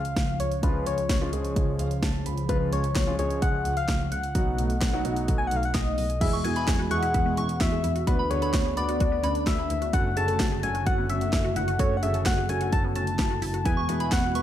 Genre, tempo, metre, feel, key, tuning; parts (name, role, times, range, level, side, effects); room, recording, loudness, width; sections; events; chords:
synth-pop; 129 BPM; 4/4; straight; A4 = 440 Hz
soft struck synth lead; melody; 0.0-14.4 s; B4 to A5; -30 LUFS; left 3 dB; chorus, ping-pong delay
warm analog pad; sustained chords; 0.0-14.4 s; B2 to F#4; -33 LUFS; right 1 dB; chorus
rich double bass; bass; 0.0-14.4 s; F#1 to E2; -29 LUFS; equal
house drum kit; drums; 0.1-14.4 s; crash cymbal, handclaps, hi-hat, kick drum, snare drum; -27 LUFS; equal
warm concert grand piano; accompaniment; 0.6-14.4 s; E#3 to B5; -34 LUFS; right 1 dB
resonant blip pluck; arpeggios; 6.2-14.4 s; B3 to A4; -35 LUFS; left 2 dB; phaser, ping-pong delay
soft synth bell; second line; 6.3-9.3, 13.8-14.4 s; B5 to C#6; -34 LUFS; right 2 dB; chorus, ping-pong delay
light reverb, digital ambience; -23 LUFS; side -11 dB against mid
0.0-6.2 A section; 6.2-14.4 B section
grand piano fill 1.6-2.5
0.0 C#; 4.4 B7; 6.2 E; 8.1 Bmadd9/D; 9.9 F#m; 13.7 E